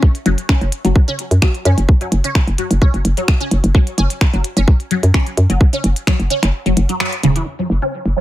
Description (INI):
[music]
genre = minimal techno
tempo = 129 BPM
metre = 4/4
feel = straight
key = unclear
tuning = A4 = 440 Hz
[part]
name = electronic kick drum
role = drums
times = 0.0-6.2 s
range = none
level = -12 LUFS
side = equal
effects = none
[part]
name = minimal click drum kit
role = drums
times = 0.1-8.1 s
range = finger snaps, hi-hat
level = -22 LUFS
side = equal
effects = overdrive, low-pass filter on hats, low-pass filter on snare, low-pass filter on room
[part]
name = resonant blip pluck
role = riff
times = 0.3-8.2 s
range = C#3 to C#4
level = -21 LUFS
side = left 1 dB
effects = phaser, ensemble chorus, sidechain pumping, dub echo
[part]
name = hollow knocking FM bass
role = bass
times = 0.3-8.1 s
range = E1 to F#2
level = -14 LUFS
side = equal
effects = sidechain pumping
[sound]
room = digital ambience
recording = none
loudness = -13 LUFS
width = side -14 dB against mid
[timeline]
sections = 0.0-7.5 A section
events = kick drops out 6.5-7.5; band accent 7.0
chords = none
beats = | 0.03 0.49 0.96 1.42 | 1.89 2.35 2.82 3.28 | 3.75 4.21 4.68 5.14 | 5.61 6.07 6.54 7.00 | 7.47 7.93